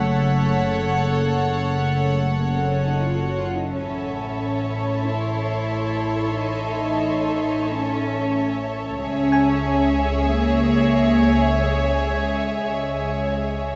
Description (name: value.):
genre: cinematic, suspense film score.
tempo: free time.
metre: none.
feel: none.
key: unclear.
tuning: A4 = 440 Hz.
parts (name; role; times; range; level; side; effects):
warm symphonic violin section; melody; 0.0-13.8 s; E5 to Gb5; -33 LUFS; equal; none.
warm studio violin section; second line; 0.0-13.8 s; Ab4 to Db5; -30 LUFS; equal; none.
warbly tape-like pad; sustained chords; 0.0-13.8 s; Db5 to A5; -33 LUFS; equal; chorus, built-in reverb, phaser.
warm studio cello section; bass; 0.0-13.8 s; Ab3 to Gb4; -26 LUFS; equal; none.
warm symphonic double bass section; bass; 0.0-13.8 s; Gb1 to Db2; -26 LUFS; equal; none.
dark chamber violin section; texture; 0.0-13.8 s; A5 to Ab6; -38 LUFS; equal; none.
music box; texture; 0.0-1.7, 9.3-11.3 s; Ab5 to Ab6; -32 LUFS; equal; none.
room: wet scoring stage reverb, RT60 1.9 s.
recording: heard from further back in the room, nothing above 7.8 kHz.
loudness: -22 LUFS.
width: mono.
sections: 0.0-13.8 A section.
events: none.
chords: 0.0 Gbm; 3.7 A; 9.0 Dbm.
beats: free time.